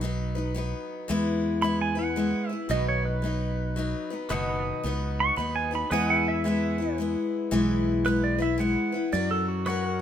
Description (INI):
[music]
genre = honky-tonk and classic country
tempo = 112 BPM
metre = 3/4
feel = swing 64% on 8ths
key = B major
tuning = A4 = 440 Hz
[part]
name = picked steel-string acoustic guitar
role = accompaniment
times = 0.0-10.0 s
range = B2 to B4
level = -27 LUFS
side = left 3 dB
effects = none
[part]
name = fingered electric bass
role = bass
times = 0.0-10.0 s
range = F#1 to F#2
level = -30 LUFS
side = right 1 dB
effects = none
[part]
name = pedal steel guitar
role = second line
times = 1.6-10.0 s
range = F#4 to C#6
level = -29 LUFS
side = right 4 dB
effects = none
[part]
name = pedal steel guitar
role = sustained chords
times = 4.3-10.0 s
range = A#4 to G#5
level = -34 LUFS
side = right 1 dB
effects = none
[sound]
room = light reverb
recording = minimal, uncompressed stereo recording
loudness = -24 LUFS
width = side -9 dB against mid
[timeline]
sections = 0.0-10.0 A section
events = pedal steel guitar solo 0.0-10.0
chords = 0.0 B; 1.1 E; 2.7 B; 5.9 E; 9.1 F#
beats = 0.02 0.56 | 1.10 1.63 2.17 | 2.70 3.24 3.77 | 4.31 4.85 5.38 | 5.92 6.45 6.99 | 7.52 8.06 8.60 | 9.13 9.66